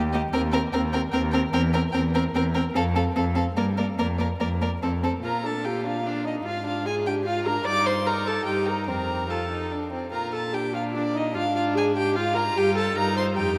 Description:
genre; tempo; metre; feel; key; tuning
quick classical-period movement for string quartet; 148 BPM; 3/4; straight; Bb major; A4 = 440 Hz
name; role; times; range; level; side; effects
rich cello; bass; 0.0-13.6 s; Eb2 to Bb2; -31 LUFS; equal; none
warm violin; melody; 0.1-13.6 s; C5 to D6; -33 LUFS; equal; none
rich violin; second line; 0.1-13.6 s; C4 to Bb4; -32 LUFS; equal; none
warm viola; accompaniment; 0.1-13.6 s; Bb3 to D5; -29 LUFS; equal; none
room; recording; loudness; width
wet cathedral reverb, RT60 5.2 s; in a vast, echoing space; -25 LUFS; mono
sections
0.0-5.3 A section; 5.3-13.6 B section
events
none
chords
0.3 Cm7/Eb; 1.5 C7/E; 2.8 F; 3.6 Gm; 4.0 Bb/F; 4.8 F5; 5.3 Bb; 6.5 Bb7/Ab; 7.7 Eb/G; 8.9 F; 10.1 Bb; 11.4 Bb7/Ab (rootless); 12.6 Fadd9/G; 13.0 Cm7/G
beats
| 0.34 0.73 1.14 | 1.54 1.94 2.35 | 2.75 3.16 3.57 | 3.99 4.41 4.83 | 5.25 5.66 6.07 | 6.47 6.88 7.28 | 7.67 8.08 8.48 | 8.89 9.30 9.71 | 10.12 10.54 10.95 | 11.35 11.76 12.16 | 12.56 12.96 13.37

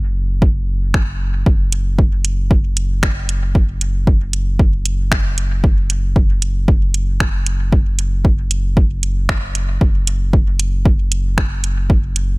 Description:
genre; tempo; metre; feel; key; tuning
dub techno; 115 BPM; 4/4; swing 53% on 16ths; unclear; A4 = 440 Hz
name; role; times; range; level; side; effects
warm sub bass; bass; 0.0-12.4 s; F#1; -18 LUFS; equal; sidechain pumping
electronic kick drum; drums; 0.4-12.0 s; none; -14 LUFS; equal; overdrive
soft vintage rhythm box; drums; 0.9-12.3 s; finger snaps, hi-hat; -21 LUFS; right 2 dB; none
room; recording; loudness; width
digital ambience; none; -14 LUFS; side -26 dB against mid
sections
0.0-12.4 A section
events
none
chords
none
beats
0.42 0.94 | 1.46 1.99 2.51 3.03 | 3.55 4.07 4.59 5.12 | 5.64 6.16 6.68 7.20 | 7.72 8.25 8.77 9.29 | 9.81 10.33 10.86 11.38 | 11.90

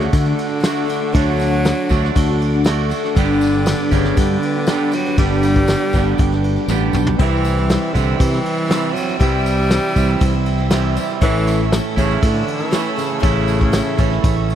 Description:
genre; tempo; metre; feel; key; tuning
folk rock and heartland rock; 119 BPM; 4/4; straight; D major; A4 = 438 Hz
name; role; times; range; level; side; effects
clear tenor saxophone; melody; 0.0-14.6 s; C#3 to G3; -22 LUFS; equal; none
picked twelve-string acoustic guitar; accompaniment; 0.0-14.6 s; G2 to G4; -23 LUFS; left 6 dB; lush chorus
dark studio string section; sustained chords; 0.0-14.6 s; A4 to E6; -32 LUFS; left 2 dB; none
twangy electric guitar; riff; 0.0-14.6 s; G2 to G4; -22 LUFS; right 16 dB; none
fingered electric bass; bass; 0.0-14.6 s; G1 to D3; -18 LUFS; equal; none
soft brush drum kit; drums; 0.0-14.6 s; crash cymbal, kick drum, ride cymbal, snare drum, toms; -20 LUFS; equal; none
tambourine; percussion; 0.1-14.6 s; none; -38 LUFS; left 10 dB; none
bright concert grand piano; accompaniment; 7.2-14.6 s; C4 to C#5; -32 LUFS; left 14 dB; none
room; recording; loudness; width
small room ambience; dry, close 1970s-style studio recording; -14 LUFS; side -10 dB against mid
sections
0.0-14.6 A section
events
drum fill 6.7-7.2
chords
0.0 D; 3.2 G; 7.2 C; 11.2 A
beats
0.14 0.65 | 1.15 1.65 2.16 2.66 | 3.16 3.67 4.17 4.67 | 5.18 5.68 6.19 6.69 | 7.19 7.70 8.20 8.70 | 9.21 9.71 10.21 10.71 | 11.22 11.72 12.22 12.73 | 13.23 13.74 14.24

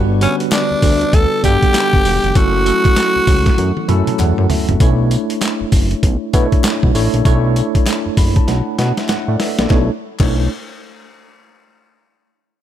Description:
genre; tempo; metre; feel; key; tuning
R&B, new jack swing; 98 BPM; 4/4; swing 62% on 16ths; B minor; A4 = 441 Hz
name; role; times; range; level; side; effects
tine electric piano; accompaniment; 0.0-10.5 s; D3 to B5; -19 LUFS; right 1 dB; fast stereo tremolo
fat analog bass; bass; 0.0-10.5 s; E1 to B2; -17 LUFS; equal; none
growling tenor saxophone; melody; 0.2-4.2 s; C#4 to A4; -16 LUFS; equal; none
boom bap sampler-style drum kit; drums; 0.2-10.3 s; crash cymbal, handclaps, hi-hat, kick drum, snare drum, tambourine, toms; -16 LUFS; equal; none
group handclap; percussion; 0.5-10.5 s; none; -32 LUFS; left 6 dB; none
room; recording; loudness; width
digital ambience; none; -12 LUFS; side -11 dB against mid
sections
0.0-4.8 A section; 4.8-9.7 B section; 9.7-12.2 C section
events
drum fill 3.6-4.8, 8.5-9.7; tine electric piano fill 3.6-4.8, 7.9-9.7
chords
0.0 Gmaj7; 2.4 F#m7; 4.8 Bm11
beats
0.52 1.13 1.74 | 2.35 2.97 3.58 4.19 | 4.80 5.42 6.03 6.64 | 7.25 7.87 8.48 9.09 | 9.70 10.31

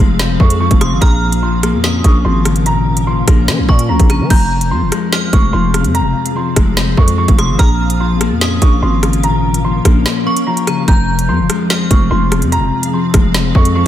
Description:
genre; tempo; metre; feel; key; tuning
hip hop, drill; 146 BPM; 4/4; half-time; F minor; A4 = 440 Hz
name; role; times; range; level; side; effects
dark concert grand piano; melody; 0.0-13.9 s; Bb5 to Db6; -21 LUFS; right 3 dB; low-pass filter, diffuse ambient delay
clean electric guitar; accompaniment; 0.0-13.9 s; F2 to Db4; -18 LUFS; left 7 dB; warbly pitch drift, low-pass filter
granular cloud pad; sustained chords; 0.0-13.9 s; F3 to F5; -23 LUFS; right 1 dB; built-in reverb, ensemble chorus
growling 808-style bass; bass; 0.0-13.8 s; F1 to F3; -15 LUFS; equal; none
drill drum kit; drums; 0.2-13.7 s; crash cymbal, hi-hat, kick drum, rim click, snare drum; -13 LUFS; equal; none
metallic FM bell; second line; 0.8-12.5 s; Bb5 to G6; -24 LUFS; right 2 dB; chorus, phaser, diffuse ambient delay
room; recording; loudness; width
light reverb, digital ambience; none; -10 LUFS; side -11 dB against mid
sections
0.0-4.3 A section; 4.3-13.9 A section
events
break 10.1-10.9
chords
0.0 Fm; 1.0 Bbm; 4.3 Fm; 7.6 Bbm; 10.9 Fm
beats
0.19 0.60 | 1.02 1.43 1.84 2.25 | 2.66 3.07 3.48 3.89 | 4.30 4.71 5.12 5.54 | 5.95 6.36 6.77 7.18 | 7.59 8.00 8.41 8.82 | 9.23 9.65 10.06 10.47 | 10.88 11.29 11.70 12.11 | 12.52 12.93 13.34 13.76

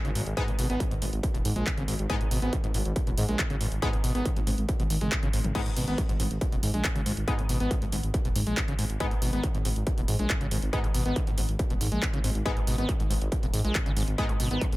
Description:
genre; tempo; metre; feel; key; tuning
driving peak-time techno; 139 BPM; 4/4; straight; G# harmonic minor; A4 = 444 Hz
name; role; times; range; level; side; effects
screaming distorted acid line; riff; 0.0-14.8 s; G#1 to B3; -32 LUFS; equal; distortion, chorus, sidechain pumping, dub echo
dark detuned saw bass; bass; 0.0-14.8 s; D#1 to G#2; -30 LUFS; equal; sidechain pumping
punchy analog drum machine; drums; 0.0-14.8 s; crash cymbal, handclaps, hi-hat, toms; -34 LUFS; equal; overdrive
sync-sweep polysynth; stabs; 0.4-14.2 s; G#3 to D#4; -36 LUFS; left 2 dB; chorus, sidechain pumping, dub echo
electronic kick drum; drums; 0.4-14.7 s; none; -29 LUFS; equal; distortion
room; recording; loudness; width
light reverb; echo-heavy mix; -25 LUFS; side -19 dB against mid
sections
0.0-14.8 A section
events
none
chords
0.0 G#m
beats
| 0.37 0.80 1.23 1.67 | 2.10 2.53 2.96 3.39 | 3.82 4.25 4.69 5.12 | 5.55 5.98 6.41 6.84 | 7.28 7.71 8.14 8.57 | 9.00 9.44 9.87 10.30 | 10.73 11.16 11.59 12.03 | 12.46 12.89 13.32 13.75 | 14.18 14.62

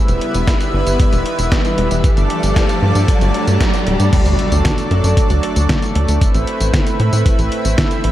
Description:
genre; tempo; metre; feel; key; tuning
italo disco; 115 BPM; 4/4; straight; unclear; A4 = 440 Hz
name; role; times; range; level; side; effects
lush unison pad; sustained chords; 0.0-8.1 s; F#3 to E5; -19 LUFS; equal; chorus
riser and impact; sound effects; 0.0-6.2 s; none; -23 LUFS; equal; none
tight sequencer bass; bass; 0.1-8.1 s; D1 to A2; -16 LUFS; equal; none
detuned 8-bit digital drum machine; drums; 0.1-8.1 s; crash cymbal, hi-hat, snare drum, tambourine; -22 LUFS; equal; high-pass filter on hats, high-pass filter on perc, high-pass filter on snare, high-pass filter on cymbals, high-pass filter on room
electronic kick drum; drums; 0.5-7.9 s; none; -16 LUFS; equal; none
room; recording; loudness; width
light reverb; dark, warm production, vinyl crackle; -13 LUFS; side -13 dB against mid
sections
0.0-4.1 A section; 4.1-8.1 B section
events
riser 0.0-4.1; impact 4.1-6.2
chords
0.0 Em; 2.0 Gsus2; 4.1 D; 6.2 Amadd9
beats
0.47 1.00 1.52 | 2.04 2.56 3.08 3.61 | 4.13 4.65 5.17 5.69 | 6.21 6.74 7.26 7.78

